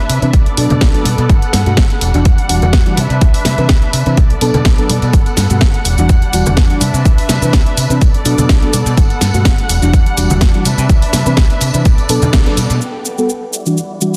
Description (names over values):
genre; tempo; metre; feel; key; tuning
filtered disco house; 125 BPM; 4/4; swing 53% on 16ths; G major; A4 = 439 Hz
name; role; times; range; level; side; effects
muted studio string section; sustained chords; 0.0-14.2 s; G3 to G5; -24 LUFS; equal; sidechain pumping, low-pass filter
overdriven fingered electric bass; bass; 0.1-12.8 s; E1 to C3; -18 LUFS; equal; sidechain pumping, low-pass filter
house drum kit; drums; 0.1-14.2 s; hi-hat, shaker, snare drum; -21 LUFS; equal; sidechain pumping on hats, sidechain pumping on perc
tambourine and congas; percussion; 0.1-12.8 s; none; -24 LUFS; equal; sidechain pumping on perc, low-pass filter on perc
mellow reed electric piano; accompaniment; 0.2-14.2 s; B2 to B4; -20 LUFS; equal; phaser, sidechain pumping, low-pass filter
electronic kick drum; drums; 0.3-12.4 s; none; -13 LUFS; equal; none
room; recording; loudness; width
light reverb; dense, heavily limited modern master; -12 LUFS; mono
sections
0.0-12.8 A section; 12.8-14.2 B section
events
band accent 12.3; filter sweep 12.8-14.2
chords
0.3 Bm7; 1.3 Gmaj9; 2.0 Em9; 3.0 Cmaj9; 4.2 Bm7; 5.1 Gmaj9; 5.9 Em9; 6.8 Cmaj9; 8.0 Bm7; 9.0 Gmaj9; 9.7 Em9; 10.7 Cmaj9; 11.9 Bm7; 12.8 Gmaj9; 13.5 Em9